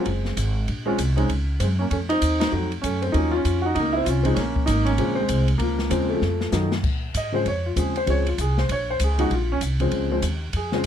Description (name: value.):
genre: jazz piano trio.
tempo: 195 BPM.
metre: 4/4.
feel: swing 62% on 8ths.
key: Bb minor.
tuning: A4 = 441 Hz.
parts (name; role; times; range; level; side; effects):
warm grand piano; melody; 0.0-10.9 s; Db3 to Eb5; -23 LUFS; equal; none.
upright bass; bass; 0.1-10.9 s; Gb1 to Bb2; -24 LUFS; equal; none.
open jazz drum kit; drums; 0.1-10.9 s; crash cymbal, hi-hat, kick drum, ride cymbal, snare drum; -30 LUFS; left 1 dB; none.
room: little or no reverb.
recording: close, detailed microphones.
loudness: -20 LUFS.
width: side -9 dB against mid.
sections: 0.0-6.8 A section; 6.8-10.9 B section.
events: band accent 2.4; drum fill 6.2-6.8; grand piano solo 6.8-10.9.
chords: 0.0 N.C.; 0.7 Bbm7; 1.9 F7b9; 3.1 Ebm9; 4.4 Bbm7; 6.2 F7b9; 6.8 Bbm7.